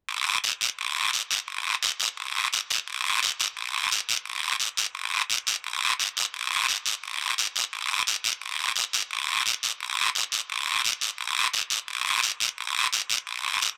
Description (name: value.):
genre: latin.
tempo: 173 BPM.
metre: 4/4.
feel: straight.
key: none.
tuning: none.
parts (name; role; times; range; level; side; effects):
guiro; percussion; 0.1-13.8 s; none; -26 LUFS; equal; none.
room: light reverb.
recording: close, detailed microphones.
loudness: -26 LUFS.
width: mono.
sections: 0.1-5.6 A section; 5.6-13.8 B section.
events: none.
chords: none.